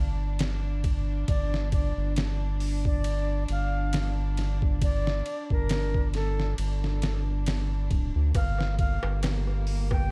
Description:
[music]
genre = trip hop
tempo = 68 BPM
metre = 4/4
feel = swing 56% on 16ths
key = G minor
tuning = A4 = 440 Hz
[part]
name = warm studio string section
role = sustained chords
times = 0.0-10.1 s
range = Bb3 to D4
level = -41 LUFS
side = equal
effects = none
[part]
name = round analog bass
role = bass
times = 0.0-10.1 s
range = D1 to D2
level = -30 LUFS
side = equal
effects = none
[part]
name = trip hop sampler-style drum kit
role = drums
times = 0.4-10.1 s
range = hi-hat, kick drum, ride cymbal, snare drum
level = -31 LUFS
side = equal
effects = small room ambience
[part]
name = breathy bright concert flute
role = melody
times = 1.3-10.1 s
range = A4 to G5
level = -38 LUFS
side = equal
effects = tape echo
[part]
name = darbuka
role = percussion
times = 8.4-10.1 s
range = none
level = -41 LUFS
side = equal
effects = none
[part]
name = wind-like tuned noise texture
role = texture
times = 9.2-10.1 s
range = Bb3 to G4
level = -50 LUFS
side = equal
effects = none
[sound]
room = small room ambience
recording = dark, warm production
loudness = -28 LUFS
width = mono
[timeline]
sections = 0.0-10.1 A section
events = none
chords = 0.0 Gm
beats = 0.40 | 1.29 2.17 3.05 3.93 | 4.82 5.70 6.58 7.46 | 8.35 9.23 10.11

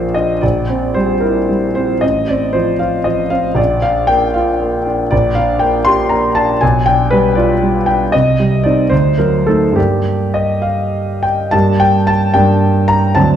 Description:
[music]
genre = classical, romantic character piece for solo piano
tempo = 65-82 BPM (dotted quarters)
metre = 6/8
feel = rubato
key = Bb major, G minor from 5.1 s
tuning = A4 = 438 Hz
[part]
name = warm concert grand piano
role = solo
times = 0.0-13.4 s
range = A1 to C6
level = -11 LUFS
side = equal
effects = none
[sound]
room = wet recital hall reverb, RT60 1.6 s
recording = none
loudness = -11 LUFS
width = side -9 dB against mid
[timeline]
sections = 0.0-11.5 A section; 11.5-13.4 B section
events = none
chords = 0.4 C7/Bb; 2.0 F/A; 3.6 Bb; 5.1 Gm/Bb; 6.6 G7/B; 8.1 Cm; 8.9 D; 9.8 Gm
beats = | 0.42 1.23 | 2.03 2.81 | 3.58 4.36 | 5.12 5.87 | 6.62 7.37 | 8.13 8.91 | 9.77 10.64 | 11.53 12.36 | 13.16

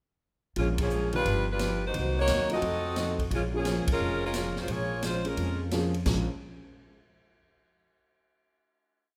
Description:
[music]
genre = jazz, big band swing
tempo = 175 BPM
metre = 4/4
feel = swing 65% on 8ths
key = Bb minor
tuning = A4 = 440 Hz
[part]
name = clear saxophone section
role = melody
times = 0.6-5.6 s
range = F3 to Eb5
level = -32 LUFS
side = equal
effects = none
[part]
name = picked steel-string acoustic guitar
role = accompaniment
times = 0.6-6.2 s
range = G2 to Gb4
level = -39 LUFS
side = equal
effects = none
[part]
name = warm concert grand piano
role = accompaniment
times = 0.6-6.3 s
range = Eb3 to Ab4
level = -38 LUFS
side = equal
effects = none
[part]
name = upright bass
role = bass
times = 0.6-6.3 s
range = F1 to F2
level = -34 LUFS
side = equal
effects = none
[part]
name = swinging big-band drum kit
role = drums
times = 0.6-6.2 s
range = crash cymbal, hi-hat, kick drum, ride cymbal, snare drum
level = -37 LUFS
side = equal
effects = none
[sound]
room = light reverb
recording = none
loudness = -29 LUFS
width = mono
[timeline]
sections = 0.6-6.1 A section; 6.1-7.4 final chord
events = band accent 0.7, 3.8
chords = 0.6 Bbm7; 1.2 G7b13; 1.9 Cm7b5; 2.6 F7b9; 3.3 Bbm7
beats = | 0.56 0.91 1.25 1.59 | 1.93 2.28 2.62 2.96 | 3.30 3.65 3.99 4.33 | 4.68 5.02 5.37 5.71 | 6.06

